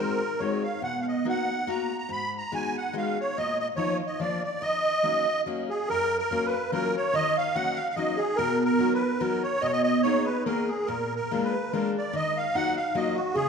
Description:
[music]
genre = musette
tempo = 144 BPM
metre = 3/4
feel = swing 54% on 8ths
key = Eb minor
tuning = A4 = 440 Hz
[part]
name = musette accordion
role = melody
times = 0.0-13.5 s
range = F#4 to Cb6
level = -26 LUFS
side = right 1 dB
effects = none
[part]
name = picked steel-string acoustic guitar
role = accompaniment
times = 0.0-13.5 s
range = F#2 to G#4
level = -29 LUFS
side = left 2 dB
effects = none
[sound]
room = wet scoring stage reverb, RT60 1.7 s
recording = minimal, uncompressed stereo recording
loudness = -24 LUFS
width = side -6 dB against mid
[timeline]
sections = 0.0-5.9 A section; 5.9-13.5 B section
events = none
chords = 0.0 Ab7; 0.8 Bmaj7; 2.1 Abm7; 3.4 Bbsus4; 4.2 Bb; 4.6 Ebm7; 5.9 F#maj7; 7.1 D#m7; 8.4 B; 9.6 G#madd9/B; 10.9 A#7; 12.1 D#madd9

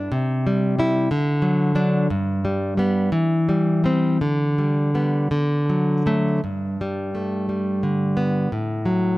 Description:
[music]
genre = romantic piece for solo classical guitar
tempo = 52-61 BPM (dotted quarters)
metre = 6/8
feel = rubato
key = G major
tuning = A4 = 438 Hz
[part]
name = nylon-string guitar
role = solo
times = 0.0-9.2 s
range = G2 to E4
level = -19 LUFS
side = equal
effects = none
[sound]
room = light reverb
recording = close, detailed microphones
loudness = -19 LUFS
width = side -19 dB against mid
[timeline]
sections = 0.0-6.4 A section; 6.4-9.2 B section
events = none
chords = 0.1 C; 1.1 D; 2.1 G; 3.1 C/E; 4.2 G/D; 5.3 D; 6.4 G; 8.5 A5

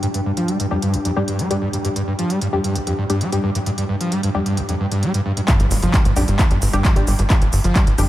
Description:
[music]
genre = driving peak-time techno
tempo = 132 BPM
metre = 4/4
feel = straight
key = unclear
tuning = A4 = 441 Hz
[part]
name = screaming distorted acid line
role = riff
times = 0.0-8.0 s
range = G1 to G3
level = -21 LUFS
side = equal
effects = distortion, analog chorus, sidechain pumping, analog delay
[part]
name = techno drum kit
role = drums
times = 0.0-8.1 s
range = handclaps, hi-hat, shaker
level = -26 LUFS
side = equal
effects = overdrive, studio ambience
[part]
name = impact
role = sound effects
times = 0.0, 5.5-7.3 s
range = none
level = -30 LUFS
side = equal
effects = none
[part]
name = warbly tape-like pad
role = texture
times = 0.0-5.5 s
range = D4 to G5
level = -31 LUFS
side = left 2 dB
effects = chorus, built-in reverb, sidechain pumping
[part]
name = filtered dub chord stab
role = stabs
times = 0.7-8.0 s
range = G3 to G4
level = -26 LUFS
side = left 1 dB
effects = chorus, sidechain pumping, analog delay
[part]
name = electronic kick drum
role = drums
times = 5.5-7.8 s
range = none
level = -16 LUFS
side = equal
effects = overdrive, studio ambience
[part]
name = tight sequencer bass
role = bass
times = 5.6-8.1 s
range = G1 to A1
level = -19 LUFS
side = equal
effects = sidechain pumping
[sound]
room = moderate cathedral reverb, RT60 5.3 s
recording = dreamy mix soaked in reverb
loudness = -16 LUFS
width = side -14 dB against mid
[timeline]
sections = 0.0-5.5 A section; 5.5-8.1 B section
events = filter sweep on acid bass 0.0-5.5; drop 5.5-8.1; impact 5.5-7.3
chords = 0.0 G5

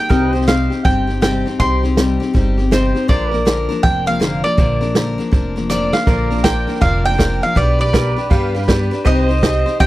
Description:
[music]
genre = honky-tonk and classic country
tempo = 161 BPM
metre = 4/4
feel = swing 63% on 8ths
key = C minor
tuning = A4 = 439 Hz
[part]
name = mandolin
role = melody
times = 0.0-9.9 s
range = C5 to C6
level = -20 LUFS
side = right 2 dB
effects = none
[part]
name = picked steel-string acoustic guitar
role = accompaniment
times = 0.0-9.9 s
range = Bb2 to C5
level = -20 LUFS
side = left 3 dB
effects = none
[part]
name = pedal steel guitar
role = sustained chords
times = 0.0-9.9 s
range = Bb4 to Eb5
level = -27 LUFS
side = equal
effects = wide subtle chorus
[part]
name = upright bass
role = bass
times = 0.1-9.9 s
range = F1 to G2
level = -19 LUFS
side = equal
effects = none
[part]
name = vintage drum kit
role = drums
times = 0.1-9.9 s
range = hi-hat, kick drum, snare drum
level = -17 LUFS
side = right 1 dB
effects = none
[part]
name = tack piano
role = accompaniment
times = 6.1-9.9 s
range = F4 to F5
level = -25 LUFS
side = right 6 dB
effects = none
[sound]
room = light reverb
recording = dry, close 1970s-style studio recording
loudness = -13 LUFS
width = side -16 dB against mid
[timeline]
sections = 0.0-6.1 A section; 6.1-9.9 B section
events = drum fill 5.7-6.1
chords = 0.1 Cm; 3.1 Bb; 7.6 G/B; 9.1 Cm

